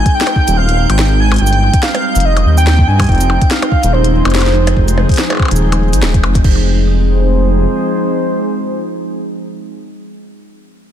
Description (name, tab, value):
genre	IDM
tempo	143 BPM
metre	4/4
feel	swing 56% on 16ths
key	F minor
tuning	A4 = 440 Hz
part	warm velvety synth lead	melody	0.0-9.5 s	C5 to Ab5	-19 LUFS	equal	chorus, ping-pong delay
part	warbly tape-like pad	sustained chords	0.0-9.5 s	F3 to Ab4	-18 LUFS	equal	chorus, built-in reverb, sidechain pumping
part	bubbling stepped-filter texture	texture	0.0-6.5 s	G6	-26 LUFS	right 4 dB	chorus, built-in reverb
part	glitchy drum kit	drums	0.1-6.6 s	crash cymbal, kick drum	-13 LUFS	equal	small room ambience
part	glitchy drum kit	drums	0.1-6.4 s	hi-hat, percussion blips, shaker, snare drum	-19 LUFS	equal	small room ambience, ping-pong delay
part	dark detuned saw bass	bass	0.5-7.7 s	Eb1 to G2	-12 LUFS	equal	none
room	little or no reverb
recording	dense, heavily limited modern master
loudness	-10 LUFS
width	side -10 dB against mid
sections	0.0-6.4 A section; 6.4-9.8 B section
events	none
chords	0.0 Ab; 1.4 Cm; 3.1 Fm7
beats	0.15 0.57 0.99 | 1.41 1.83 2.25 2.67 | 3.09 3.51 3.93 4.35 | 4.76 5.18 5.61 6.02 | 6.44 6.86 7.28 7.70 | 8.12 8.54 8.96 9.38